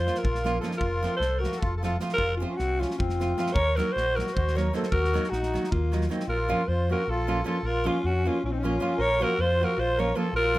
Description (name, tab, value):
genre	balkan folk, Balkan wedding band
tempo	308 BPM (eighths)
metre	7/8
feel	straight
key	unclear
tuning	A4 = 441 Hz
part	breathy alto saxophone	melody	0.0-10.6 s	Eb4 to Db5	-27 LUFS	equal	none
part	accordion	second line	0.0-10.6 s	Bb3 to Bb4	-32 LUFS	left 2 dB	light tremolo tuning
part	fingered electric bass	bass	0.0-10.6 s	F1 to F2	-29 LUFS	equal	none
part	nylon-string guitar	accompaniment	0.1-10.6 s	Eb3 to F4	-31 LUFS	right 2 dB	none
part	natural country drum kit	percussion	0.1-6.2 s	kick drum, snare drum	-33 LUFS	equal	none
room	moderate small room reverb, RT60 0.5 s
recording	none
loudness	-24 LUFS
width	side -17 dB against mid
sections	0.0-6.3 A section; 6.3-10.6 A section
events	none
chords	0.0 Bbm; 0.8 F; 3.6 Ebm; 6.3 Bbm